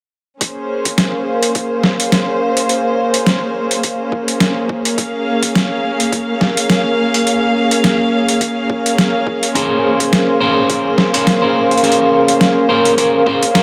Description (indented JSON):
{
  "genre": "glitch hop",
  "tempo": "105 BPM",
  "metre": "4/4",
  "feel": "swing 56% on 16ths",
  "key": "Bb minor",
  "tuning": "A4 = 440 Hz",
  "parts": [
    { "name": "dark chamber string section", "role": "sustained chords", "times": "0.4-13.6 s", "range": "Bb3 to F5", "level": "-20 LUFS", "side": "equal", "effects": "vintage 12-bit sampler grit, sidechain pumping" },
    { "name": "boom bap sampler-style drum kit", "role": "drums", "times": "0.4-13.6 s", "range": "hi-hat, snare drum", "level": "-18 LUFS", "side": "equal", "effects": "overdrive, small room ambience" },
    { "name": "electronic kick drum", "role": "drums", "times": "0.4-13.4 s", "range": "none", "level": "-28 LUFS", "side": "equal", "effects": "overdrive, high-pass filter on kick, small room ambience" },
    { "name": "warbly tape-like pad", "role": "texture", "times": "0.8-13.6 s", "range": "Bb4 to F5", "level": "-21 LUFS", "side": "equal", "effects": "chorus, built-in reverb, sidechain pumping" },
    { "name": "electric guitar at the edge of break-up", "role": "stabs", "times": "9.5-13.6 s", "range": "Db4 to C5", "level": "-18 LUFS", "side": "equal", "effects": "sidechain pumping, dub echo" }
  ],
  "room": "moderate lush hall reverb, RT60 2.8 s",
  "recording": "none",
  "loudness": "-15 LUFS",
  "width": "mono",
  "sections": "0.4-13.6 A section",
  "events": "none",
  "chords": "0.4 Bbm9"
}